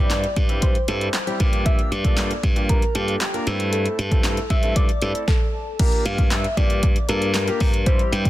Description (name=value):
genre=dance-pop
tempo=116 BPM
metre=4/4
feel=straight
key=G dorian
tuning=A4 = 439 Hz
part: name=soft struck synth lead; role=melody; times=0.0-8.3 s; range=G4 to G5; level=-27 LUFS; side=left 1 dB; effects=chorus
part: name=warm concert grand piano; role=accompaniment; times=0.0-8.3 s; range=G3 to Bb4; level=-30 LUFS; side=left 1 dB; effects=sidechain pumping
part: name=glassy slap bass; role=bass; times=0.0-8.3 s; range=G2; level=-24 LUFS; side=equal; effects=sidechain pumping
part: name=punchy analog drum machine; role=drums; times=0.1-8.3 s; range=crash cymbal, handclaps, hi-hat, kick drum, snare drum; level=-20 LUFS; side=equal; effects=none
room=little or no reverb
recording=dense, heavily limited modern master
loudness=-18 LUFS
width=side -15 dB against mid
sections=0.0-5.8 A section; 5.8-8.3 B section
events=none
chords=0.0 C/G; 1.4 Gm7; 3.5 Am/G; 5.8 Gm7